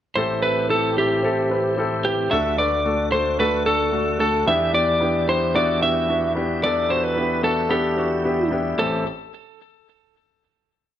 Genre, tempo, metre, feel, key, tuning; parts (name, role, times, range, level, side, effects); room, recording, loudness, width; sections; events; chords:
piano-driven pop; 111 BPM; 4/4; straight; A dorian; A4 = 441 Hz
tonewheel organ; sustained chords; 0.1-9.0 s; D2 to G4; -29 LUFS; right 3 dB; overdrive, chorus vibrato, slow rotary speaker
lightly driven lead guitar; melody; 0.2-9.0 s; G4 to E5; -21 LUFS; equal
warm grand piano; accompaniment; 0.2-9.0 s; A1 to B4; -23 LUFS; left 2 dB
moderate large studio reverb, RT60 0.9 s, studio reverb; -18 LUFS; side -10 dB against mid
0.2-8.8 verse; 8.8-10.9 final chord
0.2 Am7; 2.3 D; 4.5 Em7; 8.8 Am7